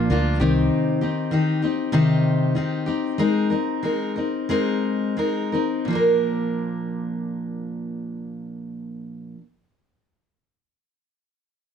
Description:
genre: pop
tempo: 84-99 BPM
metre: 4/4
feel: swing 60% on 16ths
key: Bb mixolydian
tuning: A4 = 440 Hz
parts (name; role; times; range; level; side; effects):
- picked steel-string acoustic guitar; accompaniment; 0.0-9.5 s; Bb2 to Bb4; -21 LUFS; left 1 dB; none
- vintage muted fingered electric bass; bass; 0.0-0.7 s; C2 to D2; -22 LUFS; right 1 dB; none
room: light reverb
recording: none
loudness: -20 LUFS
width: side -8 dB against mid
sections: 0.0-5.9 A section; 5.9-8.8 B section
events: slowing down 0.7-5.9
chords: 0.4 Cm; 3.2 Abadd9; 5.9 Bb

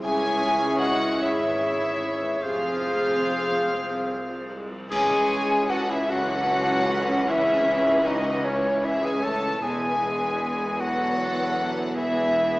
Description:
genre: cinematic, emotional film score for orchestra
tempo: 51 BPM (dotted quarters)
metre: 6/8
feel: rubato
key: C# minor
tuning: A4 = 439 Hz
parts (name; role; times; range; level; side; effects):
- warm symphonic violin section; melody; 0.0-12.6 s; E4 to G#5; -31 LUFS; equal; none
- clear clarinet; second line; 0.0-12.6 s; C#4 to A4; -30 LUFS; equal; none
- hollow concert flute; second line; 0.0-12.6 s; C5 to A5; -27 LUFS; equal; none
- warm oboe; second line; 0.0-4.6 s; C5 to C#5; -34 LUFS; equal; none
- warm symphonic violin section; second line; 0.0-12.6 s; E4 to A5; -32 LUFS; left 1 dB; none
- dark symphonic viola section; accompaniment; 0.0-12.6 s; C3 to C#4; -30 LUFS; equal; none
- mellow French horn section; sustained chords; 0.0-12.6 s; C#3 to Ab4; -31 LUFS; equal; none
- warm chamber cello section; bass; 0.0-12.6 s; C2 to G#2; -32 LUFS; right 1 dB; none
- warm symphonic double bass section; bass; 0.0-12.6 s; E1 to C#2; -38 LUFS; right 1 dB; none
- cymbal swell, clash cymbals and concert bass drum; percussion; 2.4-6.5 s; none; -38 LUFS; left 1 dB; none
room: wet scoring stage reverb, RT60 1.6 s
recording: small speaker sound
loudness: -21 LUFS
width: side -20 dB against mid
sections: 0.0-4.9 A section; 4.9-12.6 B section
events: band accent 4.9-5.7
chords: 0.0 C#m; 2.4 Fm; 4.9 C#m; 9.6 E

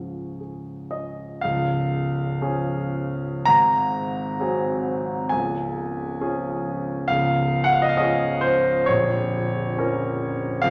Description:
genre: classical, romantic nocturne for solo piano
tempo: 53-71 BPM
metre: 4/4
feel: rubato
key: Db major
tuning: A4 = 440 Hz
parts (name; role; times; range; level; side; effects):
- clear concert grand piano; solo; 0.0-10.7 s; Bb0 to Bb5; -23 LUFS; equal; none
room: wet recital hall reverb, RT60 1.7 s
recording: none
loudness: -23 LUFS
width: mono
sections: 0.0-1.4 A section; 1.4-10.7 B section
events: none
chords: 0.0 Db; 3.5 Ab7; 5.3 Db; 8.9 Bbm

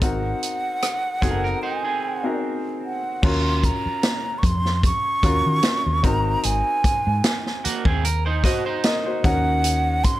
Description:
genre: lush 1970s-style soul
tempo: 75 BPM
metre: 4/4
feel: swing 54% on 16ths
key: Eb dorian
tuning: A4 = 441 Hz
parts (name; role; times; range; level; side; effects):
- breathy mellow silver concert flute; melody; 0.0-10.2 s; Gb5 to Db6; -24 LUFS; right 2 dB; none
- clear grand piano; accompaniment; 0.0-10.2 s; C4 to Eb5; -28 LUFS; left 3 dB; none
- vintage muted fingered electric bass; bass; 0.0-10.0 s; Gb1 to Eb3; -23 LUFS; equal; none
- vintage drum kit; drums; 0.0-10.2 s; crash cymbal, hi-hat, kick drum, rim click, snare drum; -22 LUFS; equal; none
- electric guitar at the edge of break-up; riff; 1.2-9.2 s; Bb3 to Eb5; -27 LUFS; right 5 dB; none
room: light reverb, small room ambience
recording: none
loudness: -19 LUFS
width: side -15 dB against mid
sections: 0.0-3.2 A section; 3.2-10.2 B section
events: break 1.6-3.2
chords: 0.0 Ab7; 3.2 Ebm7; 6.0 Ab7; 9.2 Ebm7

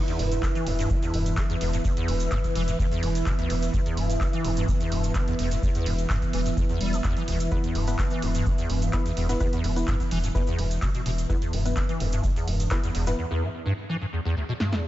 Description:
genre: acid house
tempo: 127 BPM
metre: 4/4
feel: straight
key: E minor pentatonic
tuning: A4 = 440 Hz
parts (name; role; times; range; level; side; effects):
- warm analog pad; sustained chords; 0.0-13.1 s; E3 to E5; -32 LUFS; right 1 dB; chorus, sidechain pumping
- acid bass, square; riff; 0.0-14.9 s; D2 to G3; -29 LUFS; equal; ensemble chorus, tape echo
- warbly tape-like pad; texture; 0.0-13.2 s; E4 to E6; -36 LUFS; right 2 dB; chorus, built-in reverb, phaser, sidechain pumping
- punchy analog drum machine; drums; 0.1-14.8 s; handclaps, hi-hat, snare drum; -35 LUFS; right 1 dB; none
- cabasa; percussion; 0.1-13.2 s; none; -44 LUFS; right 4 dB; none
- round analog bass; bass; 0.2-13.1 s; E1; -28 LUFS; equal; sidechain pumping
- electronic kick drum; drums; 0.4-12.8 s; none; -27 LUFS; equal; none
- filtered dub chord stab; stabs; 7.5-13.2 s; B3 to B4; -34 LUFS; left 2 dB; chorus, tape echo
room: light reverb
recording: nothing above 7.8 kHz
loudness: -23 LUFS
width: side -14 dB against mid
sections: 0.0-14.9 A section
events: drum fill 14.6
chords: 0.0 E5

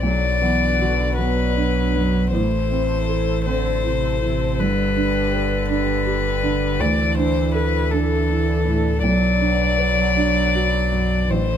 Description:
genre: neoclassical piano and strings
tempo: 53 BPM (dotted quarters)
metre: 6/8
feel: rubato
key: unclear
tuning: A4 = 440 Hz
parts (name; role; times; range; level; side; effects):
- rich violin; melody; 0.0-11.6 s; A4 to D5; -22 LUFS; left 7 dB; none
- warm cello; second line; 0.0-11.6 s; C3 to F#3; -26 LUFS; right 7 dB; none
- felt-muted upright piano; accompaniment; 0.0-11.6 s; A1 to B4; -24 LUFS; right 3 dB; none
- warm analog pad; sustained chords; 0.0-11.6 s; D4 to C5; -31 LUFS; right 1 dB; chorus, phaser
- sub bass with octave; bass; 0.0-11.6 s; G1 to D2; -23 LUFS; equal; none
room: light reverb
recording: none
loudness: -17 LUFS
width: side -9 dB against mid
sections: 0.0-11.6 A section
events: none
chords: 0.0 Bm; 2.3 Am; 4.6 G; 6.8 Dsus2; 9.0 Bm

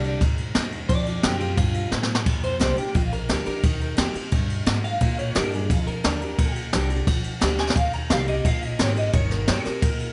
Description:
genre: rockabilly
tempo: 175 BPM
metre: 4/4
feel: straight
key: Bb mixolydian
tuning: A4 = 440 Hz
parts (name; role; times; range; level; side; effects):
- electric guitar through a small old amp; melody; 0.0-10.1 s; F4 to Bb5; -32 LUFS; equal; ensemble chorus, analog delay
- picked steel-string acoustic guitar; accompaniment; 0.0-10.1 s; F2 to G4; -32 LUFS; equal; none
- upright bass; bass; 0.0-10.1 s; G1 to Bb2; -30 LUFS; equal; none
- jazz brush drum kit; drums; 0.0-10.1 s; crash cymbal, kick drum, ride cymbal, snare drum; -25 LUFS; equal; none
room: studio ambience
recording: nothing above 11.0 kHz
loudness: -23 LUFS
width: mono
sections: 0.0-2.3 A section; 2.3-10.1 B section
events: drum fill 1.9-2.3, 7.6; clean electric guitar solo 2.3-10.1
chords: 0.0 Bb6; 0.9 F6; 2.3 Bb6; 3.6 Eb6; 5.0 Bb6; 7.8 Eb6

